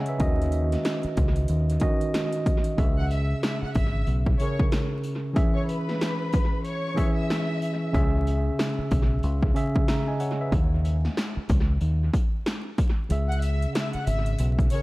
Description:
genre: hip hop, boom-bap hip-hop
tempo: 93 BPM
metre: 4/4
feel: swing 61% on 16ths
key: C# dorian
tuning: A4 = 440 Hz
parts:
  - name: mellow tine electric piano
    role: accompaniment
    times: 0.0-14.8 s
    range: C#3 to A#5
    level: -28 LUFS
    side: right 1 dB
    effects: fast stereo tremolo, analog delay
  - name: 80s electronic pad drums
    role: drums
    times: 0.1-14.8 s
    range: hi-hat, kick drum, snare drum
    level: -25 LUFS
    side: equal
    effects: overdrive, analog delay
  - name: deep dub fingered electric bass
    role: bass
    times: 0.2-14.7 s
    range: G#1 to D#2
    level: -24 LUFS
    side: equal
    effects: none
  - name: sleigh bells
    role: percussion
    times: 2.8-14.8 s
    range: none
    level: -50 LUFS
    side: left 4 dB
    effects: none
  - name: warm studio violin section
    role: melody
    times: 3.0-7.9, 13.3-14.8 s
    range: B4 to F#6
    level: -34 LUFS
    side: left 2 dB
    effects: analog delay
room: digital ambience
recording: echo-heavy mix, vinyl crackle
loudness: -22 LUFS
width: side -20 dB against mid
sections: 0.0-2.8 A section; 2.8-14.8 A section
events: hi-hats muted 2.8-13.1; kick muted 13.1-14.4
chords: 0.2 D#m7; 2.8 C#m; 5.4 E6; 7.9 C#m; 10.5 C#sus2; 13.1 C#m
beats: | 0.20 0.85 1.49 2.14 | 2.78 3.43 4.07 4.72 | 5.36 6.01 6.65 7.30 | 7.94 8.59 9.23 9.88 | 10.53 11.17 11.81 12.46 | 13.11 13.75 14.40

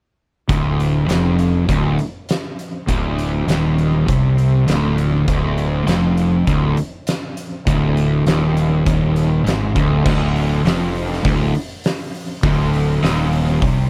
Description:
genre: stoner and doom metal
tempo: 100 BPM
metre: 4/4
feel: straight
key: unclear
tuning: A4 = 439 Hz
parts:
  - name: fuzz guitar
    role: riff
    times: 0.5-13.9 s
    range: D2 to C3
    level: -19 LUFS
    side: equal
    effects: distortion
  - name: fuzz fingered electric bass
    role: bass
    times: 0.5-13.9 s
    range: D1 to C2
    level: -24 LUFS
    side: equal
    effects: overdrive
  - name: oversized low-tuned drum kit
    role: drums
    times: 0.5-13.8 s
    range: crash cymbal, hi-hat, kick drum, snare drum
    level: -25 LUFS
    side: equal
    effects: none
room: little or no reverb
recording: none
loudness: -18 LUFS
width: mono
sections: 0.5-10.1 A section; 10.1-13.9 B section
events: none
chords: 0.5 Dm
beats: | 0.49 1.09 1.69 2.29 | 2.88 3.48 4.08 4.68 | 5.28 5.87 6.47 7.07 | 7.67 8.26 8.86 9.46 | 10.05 10.65 11.24 11.84 | 12.43 13.03 13.62

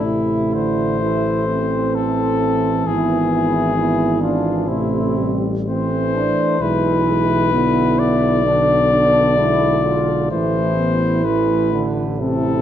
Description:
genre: classical, hymn-like piece for brass band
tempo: 57-67 BPM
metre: 4/4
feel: rubato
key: A minor from 6.6 s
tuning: A4 = 440 Hz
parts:
  - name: warm cornet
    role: melody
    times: 0.0-12.6 s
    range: E4 to D5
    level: -20 LUFS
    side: left 5 dB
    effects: none
  - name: mellow French horn section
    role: second line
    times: 0.0-12.6 s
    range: C4 to F4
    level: -21 LUFS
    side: right 6 dB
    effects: none
  - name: bright trombone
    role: accompaniment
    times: 0.0-12.6 s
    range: C3 to E3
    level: -24 LUFS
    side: right 2 dB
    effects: none
  - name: dark euphonium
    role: accompaniment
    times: 0.0-12.6 s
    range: G3 to C4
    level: -24 LUFS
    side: left 2 dB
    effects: none
  - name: warm tuba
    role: bass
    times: 0.0-12.6 s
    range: G#1 to B1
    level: -23 LUFS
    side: equal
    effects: none
room: moderate concert hall reverb, RT60 2.3 s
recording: dark, warm production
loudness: -15 LUFS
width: side -10 dB against mid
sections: 0.0-12.6 A section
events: none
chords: 0.0 Am; 2.9 E7/G#; 4.7 Am; 6.6 E7/B; 10.3 Am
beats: 0.04 1.02 1.95 | 2.87 3.77 4.68 5.68 | 6.61 7.53 8.43 9.37 | 10.30 11.24 12.20

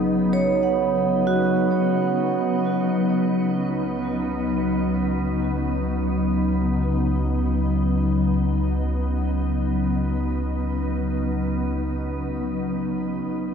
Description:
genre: ambient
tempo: free time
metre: none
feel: none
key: unclear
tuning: A4 = 440 Hz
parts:
  - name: glassy FM pad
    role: sustained chords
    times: 0.0-13.5 s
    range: C#3 to D#4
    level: -22 LUFS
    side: left 1 dB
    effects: ensemble chorus, built-in reverb
  - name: vibraphone with medium mallets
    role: arpeggios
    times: 0.0-2.8 s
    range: F#4 to F#5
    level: -25 LUFS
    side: right 6 dB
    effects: diffuse ambient delay, shimmer reverb
  - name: round analog bass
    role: bass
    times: 0.0-13.5 s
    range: G#1 to C#2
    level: -26 LUFS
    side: equal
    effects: none
room: wet scoring stage reverb, RT60 1.9 s, small room ambience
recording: none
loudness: -20 LUFS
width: side -7 dB against mid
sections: 0.0-2.2 A section; 2.2-13.5 B section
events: filter sweep on ambient pad 0.0-2.2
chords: 0.0 Badd9; 2.2 C#9sus4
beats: free time

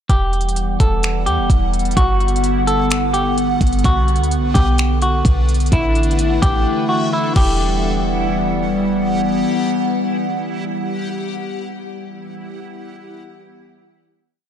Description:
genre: hip hop, atmospheric cloud-rap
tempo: 128 BPM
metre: 4/4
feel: half-time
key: E minor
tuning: A4 = 440 Hz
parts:
  - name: semi-hollow electric guitar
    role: melody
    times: 0.1-9.0 s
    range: E4 to A4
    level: -22 LUFS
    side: left 1 dB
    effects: spring reverb, ping-pong delay
  - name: warbly tape-like pad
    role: sustained chords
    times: 0.5-12.1 s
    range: D3 to F#5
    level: -20 LUFS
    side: equal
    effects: chorus, built-in reverb, sidechain pumping
  - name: clean 808-style bass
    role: bass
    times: 0.1-9.4 s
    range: E1 to E2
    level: -18 LUFS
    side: equal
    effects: none
  - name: trap drum kit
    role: drums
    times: 0.1-7.5 s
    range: crash cymbal, finger snaps, hi-hat, kick drum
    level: -20 LUFS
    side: equal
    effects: vintage 12-bit sampler grit
  - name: backwards swelling texture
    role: texture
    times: 0.1-12.1 s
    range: G3 to F#5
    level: -29 LUFS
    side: equal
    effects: built-in reverb
room: light reverb, digital ambience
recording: none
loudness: -15 LUFS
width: side -9 dB against mid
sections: 0.1-7.6 verse; 7.6-11.3 final hit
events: silent gap 6.7-7.6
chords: 0.1 Emadd9; 2.0 Gmaj7; 3.8 Bm; 5.7 Asus4; 7.4 Emadd9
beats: | 0.09 0.56 1.03 1.50 | 1.97 2.44 2.91 3.38 | 3.84 4.31 4.78 5.25 | 5.72 6.19 6.66 7.13 | 7.59 8.06 8.53 9.00 | 9.47 9.94 10.41 10.88

